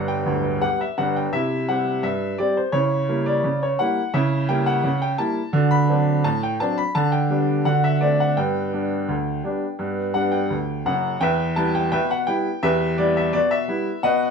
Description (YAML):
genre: ragtime piano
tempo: 85 BPM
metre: 2/4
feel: straight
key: unclear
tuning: A4 = 440 Hz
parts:
  - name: clear upright piano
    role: solo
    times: 0.0-14.3 s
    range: D1 to B5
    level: -19 LUFS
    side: equal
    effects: none
room: wet studio reverb, RT60 0.6 s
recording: heard from further back in the room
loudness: -19 LUFS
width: side -5 dB against mid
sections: 0.0-11.2 A section; 11.2-14.3 B section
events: none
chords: 0.0 G; 1.3 C; 2.7 C#dim7; 5.5 D7; 6.9 G/D; 7.7 D7; 8.4 G; 11.2 Em